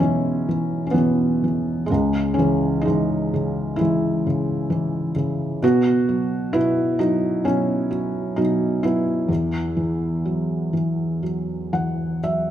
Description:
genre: classical, lyrical solo piano.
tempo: 59-66 BPM.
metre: 4/4.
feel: rubato.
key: E major.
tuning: A4 = 440 Hz.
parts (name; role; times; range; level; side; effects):
felt-muted upright piano; solo; 0.0-12.5 s; C#2 to F#5; -19 LUFS; equal; none.
room: wet recital hall reverb, RT60 1.7 s.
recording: none.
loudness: -19 LUFS.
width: side -10 dB against mid.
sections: 0.0-12.5 A section.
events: felt piano fill 11.2-12.5.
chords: 0.0 Eadd9; 1.9 C#madd9; 5.6 Bsus2; 9.3 Esus2.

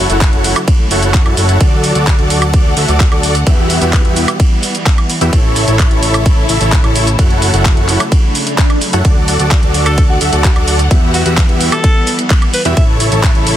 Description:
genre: EDM, festival progressive house.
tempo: 129 BPM.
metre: 4/4.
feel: straight.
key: D major.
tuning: A4 = 440 Hz.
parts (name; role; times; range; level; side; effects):
rich studio string section; sustained chords; 0.0-13.6 s; C#3 to F#5; -21 LUFS; left 1 dB; sidechain pumping.
dense compressed supersaw; riff; 0.0-13.6 s; B3 to A5; -17 LUFS; equal; sidechain pumping, ping-pong delay.
fat analog bass; bass; 0.0-13.6 s; F#1 to F#2; -16 LUFS; equal; sidechain pumping.
pop drum kit; drums; 0.1-13.6 s; cabasa, handclaps, hi-hat, ride cymbal, woodblock; -17 LUFS; right 2 dB; none.
electronic kick drum; drums; 0.2-13.3 s; none; -10 LUFS; equal; none.
swell; sound effects; 8.3-9.0 s; none; -23 LUFS; right 2 dB; none.
breathy alto saxophone; melody; 9.9-12.8 s; F#4 to E5; -20 LUFS; left 1 dB; vintage 12-bit sampler grit, ping-pong delay.
room: little or no reverb.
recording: dense, heavily limited modern master.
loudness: -9 LUFS.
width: side -12 dB against mid.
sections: 0.0-13.6 A section.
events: swell 8.3-9.0.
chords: 0.0 F#m7; 1.6 D; 3.5 Emadd9; 5.3 A; 7.2 F#m7; 9.0 D; 10.9 Emadd9; 12.8 A.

